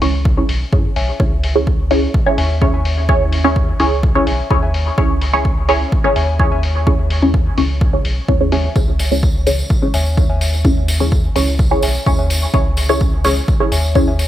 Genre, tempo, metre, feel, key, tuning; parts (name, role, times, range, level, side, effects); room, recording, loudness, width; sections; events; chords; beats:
dub techno; 127 BPM; 4/4; straight; C# minor; A4 = 441 Hz
filtered dub chord stab; stabs; 0.0-14.1 s; C#4 to C#5; -18 LUFS; equal; phaser, sidechain pumping, dub echo
soft dub sub bass; bass; 0.0-14.3 s; B1 to F#2; -18 LUFS; equal; sidechain pumping
electronic hi-hat; drums; 0.0-14.3 s; -28 LUFS; left 3 dB; studio reverb
electronic kick drum; drums; 0.3-14.1 s; -17 LUFS; equal; overdrive, studio reverb
warbly dusty pluck; riff; 1.0-14.3 s; C#5 to G#5; -28 LUFS; left 4 dB; chorus, sidechain pumping, dub echo
tambourine; percussion; 8.8-14.3 s; -28 LUFS; right 2 dB
light reverb, digital ambience; -13 LUFS; side -12 dB against mid
0.0-14.3 A section
0.0 C#m
0.25 0.73 | 1.20 1.67 2.14 2.62 | 3.09 3.56 4.03 4.51 | 4.98 5.45 5.92 6.40 | 6.87 7.34 7.81 8.29 | 8.76 9.23 9.70 10.18 | 10.65 11.12 11.59 12.06 | 12.54 13.01 13.48 13.96